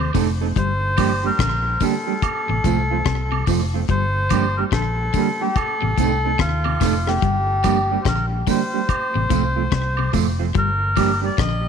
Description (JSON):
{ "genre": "roots reggae", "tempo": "72 BPM", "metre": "4/4", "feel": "swing 63% on 16ths", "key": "G minor", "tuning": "A4 = 435 Hz", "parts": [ { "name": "melodica", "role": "melody", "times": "0.0-11.7 s", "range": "F4 to Eb5", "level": "-23 LUFS", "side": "left 1 dB", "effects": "tape echo" }, { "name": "electric guitar at the edge of break-up", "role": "arpeggios", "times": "0.0-11.5 s", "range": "A2 to G3", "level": "-29 LUFS", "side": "left 12 dB", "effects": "none" }, { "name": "vintage muted fingered electric bass", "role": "bass", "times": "0.0-11.7 s", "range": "F1 to Eb2", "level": "-22 LUFS", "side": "equal", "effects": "none" }, { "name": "mellow electric guitar", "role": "accompaniment", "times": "0.1-11.3 s", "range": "F3 to A4", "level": "-24 LUFS", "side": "right 12 dB", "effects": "tape echo" }, { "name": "deep reggae drum kit", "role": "drums", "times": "0.1-11.6 s", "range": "hi-hat, kick drum, rim click", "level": "-23 LUFS", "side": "left 4 dB", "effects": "none" }, { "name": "tambourine and woodblock", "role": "percussion", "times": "0.1-11.2 s", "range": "none", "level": "-31 LUFS", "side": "right 12 dB", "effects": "none" } ], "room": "light reverb, small room ambience", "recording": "1960s-style stereo with parts hard left and right", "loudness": "-17 LUFS", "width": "side -7 dB against mid", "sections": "0.0-11.7 A section", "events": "none", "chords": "0.0 Adim; 0.6 Gm; 2.2 F; 3.9 Gm; 5.6 Adim; 7.2 Gm; 8.9 F; 10.6 Gm" }